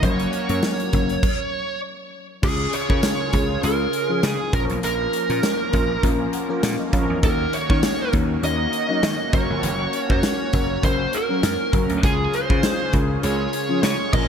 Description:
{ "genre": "1980s-style pop", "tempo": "100 BPM", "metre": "4/4", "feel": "swing 55% on 16ths", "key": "Db major", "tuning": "A4 = 440 Hz", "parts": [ { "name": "fuzz lead guitar", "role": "melody", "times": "0.0-14.3 s", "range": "Ab4 to Eb5", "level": "-24 LUFS", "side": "right 2 dB", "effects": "distortion, ping-pong delay" }, { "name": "mellow FM electric piano", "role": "accompaniment", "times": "0.0-14.3 s", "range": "Gb3 to C6", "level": "-26 LUFS", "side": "left 4 dB", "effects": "chorus" }, { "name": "brassy analog pad", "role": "sustained chords", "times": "0.0-14.3 s", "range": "Db3 to Ab4", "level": "-31 LUFS", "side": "right 1 dB", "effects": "chorus" }, { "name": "slap bass", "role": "bass", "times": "0.0-14.3 s", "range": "Gb1 to Eb3", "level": "-26 LUFS", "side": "right 1 dB", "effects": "none" }, { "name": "big rock drum kit", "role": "drums", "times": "0.0-14.3 s", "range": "crash cymbal, hi-hat, kick drum, snare drum, tambourine", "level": "-23 LUFS", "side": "equal", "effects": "gated reverb" }, { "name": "mellow synth brass", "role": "stabs", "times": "4.1-14.3 s", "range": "F3 to Bb4", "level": "-31 LUFS", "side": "right 2 dB", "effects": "chorus, ping-pong delay" }, { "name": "crunchy overdriven guitar", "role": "accompaniment", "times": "12.0-14.3 s", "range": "Bb2 to Db4", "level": "-34 LUFS", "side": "right 2 dB", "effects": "none" } ], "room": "moderate plate reverb, RT60 2.6 s", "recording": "bright 1980s-style digital production", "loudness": "-19 LUFS", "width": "side -7 dB against mid", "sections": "0.0-2.4 A section; 2.4-14.3 B section", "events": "stop 1.2-2.4; FM electric piano fill 5.4-7.2", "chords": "0.0 Gb; 2.4 Db; 4.5 Bbm; 7.2 Ebm7; 9.3 Gb; 12.0 Db", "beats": "| 0.03 0.63 1.23 1.83 | 2.43 3.03 3.63 4.23 | 4.83 5.43 6.03 6.63 | 7.23 7.83 8.43 9.03 | 9.63 10.23 10.83 11.43 | 12.03 12.63 13.23 13.83" }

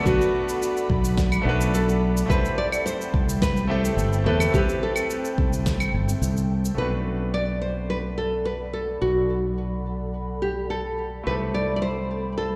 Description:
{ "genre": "sunset chillout", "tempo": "107 BPM", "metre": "4/4", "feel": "straight", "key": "unclear", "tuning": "A4 = 441 Hz", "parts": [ { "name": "nylon-string guitar", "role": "melody", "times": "0.0-12.6 s", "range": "F#4 to D5", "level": "-29 LUFS", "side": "equal", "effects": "digital delay" }, { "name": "clear concert grand piano", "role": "accompaniment", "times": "0.0-12.6 s", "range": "A3 to C5", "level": "-32 LUFS", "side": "equal", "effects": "digital delay" }, { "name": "ethereal airy pad", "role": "sustained chords", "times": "0.0-12.6 s", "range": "C4 to B5", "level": "-36 LUFS", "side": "equal", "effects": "ensemble chorus, built-in reverb" }, { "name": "mellow fretless electric bass", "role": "bass", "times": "0.1-12.6 s", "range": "G1 to E2", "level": "-28 LUFS", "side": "equal", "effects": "none" }, { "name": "electronic cabasa, snare drum and claves", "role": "drums", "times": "0.1-6.8 s", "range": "none", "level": "-32 LUFS", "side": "equal", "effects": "none" }, { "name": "electronic kick drum", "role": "drums", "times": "0.1-5.8 s", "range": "none", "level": "-28 LUFS", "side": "equal", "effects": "none" } ], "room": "light reverb", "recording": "played on a big sound system in a bare room, large studio reverb", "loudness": "-24 LUFS", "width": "mono", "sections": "0.0-6.8 A section; 6.8-12.6 B section", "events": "none", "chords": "0.0 Bm7; 2.3 Am9; 6.8 Bm7; 11.3 Am9/C", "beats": "| 0.05 0.61 1.17 1.73 | 2.29 2.85 3.42 3.98 | 4.54 5.10 5.66 6.22 | 6.78 7.34 7.90 8.46 | 9.02 9.58 10.14 10.71 | 11.27 11.83 12.39" }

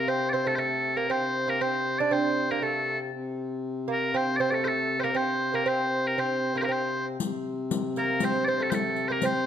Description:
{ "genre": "medieval dance", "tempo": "118 BPM", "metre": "2/4", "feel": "straight", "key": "unclear", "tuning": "A4 = 440 Hz", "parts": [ { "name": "loud bright bagpipes", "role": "melody", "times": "0.0-9.5 s", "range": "A4 to D5", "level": "-27 LUFS", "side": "equal", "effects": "none" }, { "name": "lute", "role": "second line", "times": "0.0-9.5 s", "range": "A3 to D4", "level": "-29 LUFS", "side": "right 4 dB", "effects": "none" }, { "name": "hand-pumped harmonium", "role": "drone", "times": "0.0-9.5 s", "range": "C3", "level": "-32 LUFS", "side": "left 3 dB", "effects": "none" }, { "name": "riq", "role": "percussion", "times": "7.2-9.5 s", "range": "none", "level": "-31 LUFS", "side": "left 5 dB", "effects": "none" } ], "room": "moderate recital hall reverb, RT60 1.5 s", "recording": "close, detailed microphones", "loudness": "-24 LUFS", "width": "side -9 dB against mid", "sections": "0.0-7.2 A section; 7.2-9.5 A section", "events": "none", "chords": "none", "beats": "| 0.08 0.59 | 1.09 1.60 | 2.11 2.62 | 3.13 3.64 | 4.15 4.66 | 5.17 5.67 | 6.18 6.69 | 7.20 7.71 | 8.21 8.72 | 9.23" }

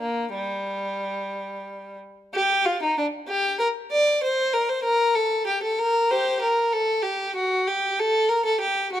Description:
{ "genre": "classical, baroque-style suite movement for unaccompanied violin", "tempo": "64 BPM (dotted quarters)", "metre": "12/8", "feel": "rubato", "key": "G minor", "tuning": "A4 = 440 Hz", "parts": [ { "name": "rich violin", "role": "solo", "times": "0.0-9.0 s", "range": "G3 to D5", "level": "-21 LUFS", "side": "equal", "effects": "none" } ], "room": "moderate recital hall reverb, RT60 1.6 s", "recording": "close, detailed microphones", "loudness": "-21 LUFS", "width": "side -11 dB against mid", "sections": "0.0-2.3 A section; 2.3-9.0 B section", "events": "none", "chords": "none", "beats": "0.32 1.32 | 2.34 3.29 4.24 5.17 | 6.10 7.05 7.99 8.93" }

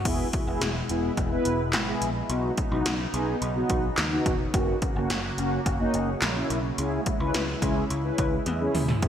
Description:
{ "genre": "synth-pop", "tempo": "107 BPM", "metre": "4/4", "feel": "straight", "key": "unclear", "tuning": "A4 = 440 Hz", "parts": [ { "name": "phased analog pad", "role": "sustained chords", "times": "0.0-9.1 s", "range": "B2 to F#4", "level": "-32 LUFS", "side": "equal", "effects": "phaser, chorus, shimmer reverb" }, { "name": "mellow synth brass", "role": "accompaniment", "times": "0.1-9.1 s", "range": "A#3 to B4", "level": "-28 LUFS", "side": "equal", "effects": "chorus, shimmer reverb" }, { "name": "picked electric bass", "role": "bass", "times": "0.1-9.1 s", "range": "E1 to E2", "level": "-31 LUFS", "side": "equal", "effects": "none" }, { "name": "80s electronic pad drums", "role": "drums", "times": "0.1-9.1 s", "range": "crash cymbal, handclaps, hi-hat, kick drum, snare drum, toms", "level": "-28 LUFS", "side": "equal", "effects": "gated reverb on snare and toms" } ], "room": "moderate lush hall reverb, RT60 2.6 s", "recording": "bright 1980s-style digital production", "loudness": "-24 LUFS", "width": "side -9 dB against mid", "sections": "0.1-9.1 A section", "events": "drum fill 8.5-9.0", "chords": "0.1 E; 2.3 Badd9; 4.5 F#; 6.8 C#m", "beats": "| 0.05 0.61 1.17 1.74 | 2.30 2.86 3.42 3.98 | 4.54 5.10 5.66 6.22 | 6.78 7.34 7.90 8.46 | 9.03" }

